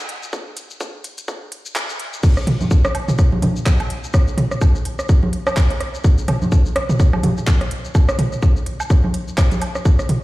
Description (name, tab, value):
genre	techno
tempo	126 BPM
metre	4/4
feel	swing 58% on 16ths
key	none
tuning	none
part	garage drum kit	drums	0.1-10.2 s	crash cymbal, handclaps, hi-hat, shaker	-29 LUFS	equal	high-pass filter on snare, high-pass filter on perc, high-pass filter on hats, high-pass filter on cymbals, high-pass filter on room
part	electronic kick drum	drums	0.3-10.0 s	none	-16 LUFS	equal	high-pass filter on kick, high-pass filter on room
part	organic electronic drum kit	percussion	2.4-10.2 s	congas, rim click, toms, woodblock	-20 LUFS	right 1 dB	digital delay
room	light reverb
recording	played on a big sound system in a bare room, large studio reverb, high-pass filter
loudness	-15 LUFS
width	side -18 dB against mid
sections	0.0-2.2 A section; 2.2-10.2 B section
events	build-up 0.0-2.2; drop 2.2-10.2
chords	none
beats	| 0.33 0.81 1.28 1.76 | 2.23 2.71 3.19 3.66 | 4.14 4.62 5.09 5.57 | 6.04 6.52 7.00 7.47 | 7.95 8.42 8.90 9.38 | 9.85